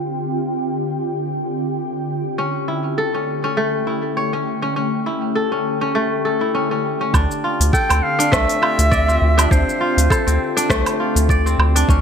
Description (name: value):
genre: organic downtempo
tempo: 101 BPM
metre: 4/4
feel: swing 56% on 16ths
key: D minor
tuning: A4 = 440 Hz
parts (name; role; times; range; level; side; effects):
- ethereal airy pad; sustained chords; 0.0-12.0 s; D3 to G5; -23 LUFS; left 1 dB; ensemble chorus, built-in reverb, sidechain pumping
- kora; arpeggios; 2.4-12.0 s; A3 to D5; -20 LUFS; left 1 dB; digital delay
- round analog bass; bass; 7.1-12.0 s; C2 to D2; -16 LUFS; equal; none
- electronic kick drum; drums; 7.1-12.0 s; none; -19 LUFS; equal; overdrive
- organic electronic drum kit; drums; 7.1-12.0 s; hi-hat, rim click, shaker, woodblock; -22 LUFS; right 1 dB; overdrive, low-pass filter on hats, low-pass filter on perc, low-pass filter on snare, gated reverb
- breathy clarinet; melody; 7.7-10.7 s; C5 to G5; -21 LUFS; right 1 dB; digital delay
room: moderate plate reverb, RT60 2.0 s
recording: bright 1980s-style digital production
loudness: -16 LUFS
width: side -7 dB against mid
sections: 0.0-7.1 A section; 7.1-12.0 B section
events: filter sweep on ambient pad 0.0-7.1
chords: 0.0 Dm7; 2.4 A7/D; 7.1 Dm11